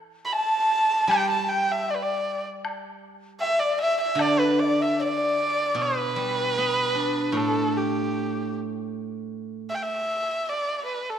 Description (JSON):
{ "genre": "chinese traditional, Chinese chamber ensemble", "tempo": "77 BPM", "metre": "2/4", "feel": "rubato", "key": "D zhi mode", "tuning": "A4 = 441 Hz", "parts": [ { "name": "warm erhu", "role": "melody", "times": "0.3-11.2 s", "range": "G4 to B5", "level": "-24 LUFS", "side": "right 1 dB", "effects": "none" }, { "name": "mellow xiao", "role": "second line", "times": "0.3-5.6 s", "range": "B4 to A5", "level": "-28 LUFS", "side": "left 4 dB", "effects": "none" }, { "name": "woodblock", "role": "percussion", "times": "0.3-4.4 s", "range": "none", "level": "-36 LUFS", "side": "left 2 dB", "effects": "none" }, { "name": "steel-string zither", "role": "accompaniment", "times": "1.1-9.7 s", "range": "A2 to D4", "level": "-27 LUFS", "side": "right 1 dB", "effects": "none" } ], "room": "moderate concert hall reverb, RT60 2.0 s", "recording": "none", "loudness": "-22 LUFS", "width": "side -9 dB against mid", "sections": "0.0-5.8 A section; 5.8-11.2 A section", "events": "none", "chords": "none" }